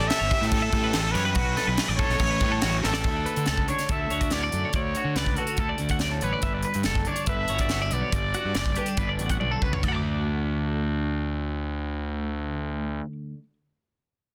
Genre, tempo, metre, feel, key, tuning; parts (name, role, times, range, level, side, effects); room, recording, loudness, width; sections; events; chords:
math rock and midwest emo; 142 BPM; 4/4; straight; D major; A4 = 440 Hz
clear trumpet; melody; 0.0-9.4 s; A4 to E5; -32 LUFS; equal; tape echo
twelve-string electric guitar; arpeggios; 0.0-13.1 s; F#4 to D6; -33 LUFS; equal; harmonic tremolo, tape echo
crunchy overdriven guitar; riff; 0.0-3.1 s; E3 to G4; -37 LUFS; equal; spring reverb
fuzz fingered electric bass; bass; 0.0-13.0 s; F#1 to D3; -31 LUFS; equal; overdrive
crisp fusion drum kit; drums; 0.1-9.9 s; china cymbal, crash cymbal, hi-hat, kick drum, snare drum, toms; -30 LUFS; equal
twelve-string electric guitar; accompaniment; 3.1-13.5 s; D2 to F#4; -35 LUFS; equal; phaser
light reverb; dense, heavily limited modern master; -26 LUFS; mono
0.0-3.1 A section; 3.1-9.8 B section; 9.8-13.2 C section
drum fill 2.8, 9.4-9.8
0.0 A7; 1.4 Bm7; 2.2 A13; 6.4 Gmaj7; 9.8 D